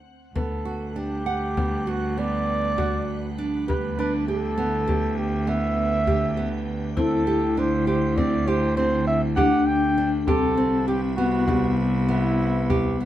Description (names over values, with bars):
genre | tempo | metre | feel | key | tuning
contemporary instrumental, chamber music in an uneven meter | 199 BPM (eighths) | 11/8 | straight | unclear | A4 = 440 Hz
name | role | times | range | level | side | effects
mellow flugelhorn | melody | 0.4-13.0 s | E4 to G5 | -26 LUFS | right 1 dB | none
soft additive organ-like pad | sustained chords | 0.8-13.1 s | C3 to F#5 | -34 LUFS | equal | ensemble chorus, built-in reverb
nylon-string guitar | arpeggios | 0.4-13.1 s | G3 to F#5 | -29 LUFS | right 4 dB | none
rich cello | bass | 0.4-13.1 s | C2 to D2 | -26 LUFS | right 1 dB | none
frame drum | percussion | 0.4-13.0 s | none | -29 LUFS | left 2 dB | none
vibraphone with soft mallets | second line | 7.0-13.1 s | B3 to E4 | -24 LUFS | left 3 dB | none
room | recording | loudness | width
moderate studio reverb, RT60 0.5 s | dark, warm production | -21 LUFS | side -12 dB against mid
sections
0.4-13.1 A section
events
stop 0.0-0.4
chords
0.4 Gmaj7/D; 3.7 G69/D; 7.0 D7sus4; 10.3 Cmaj7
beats
0.05 | 0.36 0.66 0.96 1.27 1.57 1.87 2.17 2.48 2.78 3.08 3.38 | 3.69 3.99 4.29 4.58 4.88 5.18 5.48 5.78 6.07 6.37 6.67 | 6.97 7.27 7.57 7.87 8.17 8.47 8.77 9.07 9.37 9.67 9.97 | 10.28 10.58 10.88 11.18 11.48 11.78 12.09 12.39 12.70 13.00